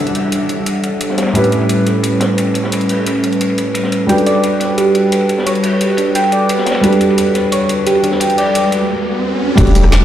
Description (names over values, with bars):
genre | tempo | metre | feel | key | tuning
liquid drum and bass | 175 BPM | 4/4 | straight | G lydian | A4 = 438 Hz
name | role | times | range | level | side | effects
felt-muted upright piano | accompaniment | 0.0-10.0 s | A2 to B4 | -18 LUFS | equal | digital delay
airy breathy pad | sustained chords | 0.0-10.0 s | G3 to F#5 | -17 LUFS | equal | chorus, sidechain pumping
downlifter, riser and impact | sound effects | 0.0-1.4, 7.8-10.0 s | none | -22 LUFS | equal | none
crunchy breakbeat drum kit | drums | 0.1-10.0 s | hi-hat, ride cymbal, snare drum | -23 LUFS | left 1 dB | high-pass filter on cymbals, low-pass filter on cymbals, high-pass filter on hats, low-pass filter on hats, high-pass filter on snare, low-pass filter on snare, high-pass filter on room, low-pass filter on room
drum and bass drum kit | drums | 0.1-10.0 s | crash cymbal, hi-hat, rim click, snare drum, tambourine | -24 LUFS | left 1 dB | overdrive
harp-like synth pluck | arpeggios | 4.1-9.7 s | D4 to G5 | -16 LUFS | right 2 dB | chorus, digital delay
warm sub bass | bass | 9.6-10.0 s | E1 | -11 LUFS | equal | none
electronic kick drum | drums | 9.6-9.7 s | none | -13 LUFS | equal | overdrive
room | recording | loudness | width
moderate lush hall reverb, RT60 2.0 s | played on a big sound system in a bare room, stone room reverb | -12 LUFS | side -11 dB against mid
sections
0.0-9.6 A section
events
riser 7.8-9.6; break 8.9-9.6; impact 9.6-10.0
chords
0.0 Em11; 1.4 A9; 4.1 Gmaj9